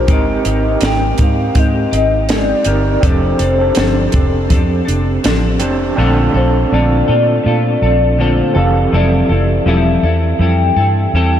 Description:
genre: indie pop, bedroom pop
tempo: 82 BPM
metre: 4/4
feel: swing 55% on 16ths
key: F major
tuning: A4 = 444 Hz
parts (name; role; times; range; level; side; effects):
- hollow clarinet-like synth lead; melody; 0.0-11.4 s; C5 to G5; -19 LUFS; left 2 dB; wide subtle chorus, ping-pong delay
- overdriven tine electric piano; accompaniment; 0.0-11.4 s; E3 to C5; -19 LUFS; right 4 dB; fast tremolo, cassette tape
- semi-hollow electric guitar; accompaniment; 0.0-11.4 s; Bb2 to A4; -19 LUFS; left 3 dB; analog chorus, warbly pitch drift
- vintage muted fingered electric bass; bass; 0.0-11.4 s; E1 to Bb2; -15 LUFS; equal; none
- compact cocktail drum kit; drums; 0.1-5.8 s; hi-hat, kick drum, snare drum; -17 LUFS; equal; none
room: moderate huge ambient reverb, RT60 7.1 s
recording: dreamy mix soaked in reverb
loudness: -11 LUFS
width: side -10 dB against mid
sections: 0.0-6.0 A section; 6.0-11.4 B section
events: none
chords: 0.1 Abmaj7; 3.0 F6; 6.0 Bbmaj9; 8.6 Fmaj9

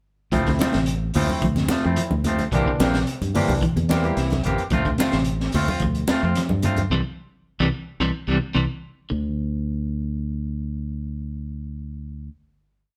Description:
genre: afrobeat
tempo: 110 BPM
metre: 4/4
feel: straight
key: D minor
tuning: A4 = 440 Hz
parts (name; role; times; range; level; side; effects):
- barky tine electric piano; accompaniment; 0.3-4.7 s; E3 to G5; -31 LUFS; equal; overdrive
- electric guitar at the edge of break-up; arpeggios; 0.3-9.3 s; C3 to A3; -28 LUFS; equal; tremolo
- electric guitar at the edge of break-up; stabs; 0.3-6.8 s; E3 to G4; -29 LUFS; equal; none
- fingered electric bass; bass; 0.3-12.3 s; A1 to G2; -27 LUFS; equal; none
- crunchy breakbeat drum kit; drums; 0.3-6.9 s; hi-hat, kick drum, snare drum; -28 LUFS; equal; none
- congas; percussion; 0.6-6.9 s; none; -29 LUFS; equal; none
room: moderate studio reverb, RT60 0.8 s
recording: band playing live in one room, faint mains hum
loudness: -23 LUFS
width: mono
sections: 0.3-9.1 groove; 9.1-11.3 final note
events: tine electric piano fill 3.6-4.7; band accent 6.9-9.1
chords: 0.3 Dm7; 2.5 C7; 4.7 Dm7; 6.9 C; 9.1 N.C.

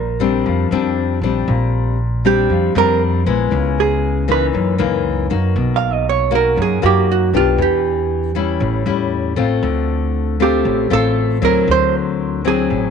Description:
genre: bossa nova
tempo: 118 BPM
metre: 4/4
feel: straight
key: unclear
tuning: A4 = 440 Hz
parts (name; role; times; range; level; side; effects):
- hollow-body jazz guitar; melody; 0.0-12.9 s; F4 to F5; -18 LUFS; right 10 dB; none
- nylon-string guitar; accompaniment; 0.0-12.9 s; Gb2 to G4; -18 LUFS; left 9 dB; none
- upright bass; bass; 0.0-12.9 s; A1 to Gb2; -20 LUFS; right 2 dB; none
room: moderate spring reverb, RT60 2.4 s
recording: 1960s-style stereo with parts hard left and right, nothing above 10.8 kHz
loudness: -14 LUFS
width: side -6 dB against mid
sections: 0.0-1.5 A section; 1.5-12.9 B section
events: hollow-body jazz guitar solo 1.5-12.9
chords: 0.0 Bb69; 3.5 Dbm7; 4.5 Gb6; 5.6 Bmaj7; 7.6 Em7; 8.6 A7; 9.6 Dm7; 11.7 D9

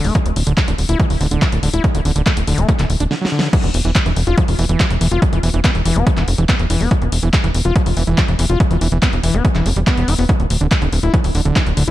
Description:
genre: psychedelic trance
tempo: 142 BPM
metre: 4/4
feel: straight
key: unclear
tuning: A4 = 441 Hz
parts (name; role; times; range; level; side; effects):
- overdriven acid bass; riff; 0.0-11.9 s; D3 to F4; -21 LUFS; moving between left 3 dB and right 3 dB; distortion, auto-pan, sidechain pumping, digital delay
- tight sequencer bass; bass; 0.0-11.9 s; D1 to F1; -17 LUFS; equal; none
- big-room dance drum kit; drums; 0.0-11.9 s; crash cymbal, handclaps, hi-hat, snare drum; -23 LUFS; left 1 dB; none
- electronic kick drum; drums; 0.2-11.6 s; none; -16 LUFS; equal; overdrive
room: digital ambience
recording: dark, warm production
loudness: -14 LUFS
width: side -14 dB against mid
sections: 0.0-3.5 A section; 3.5-11.9 B section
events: drum fill 3.1-3.5; drop 3.5-11.9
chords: 0.0 D5; 3.5 E5; 10.3 D5

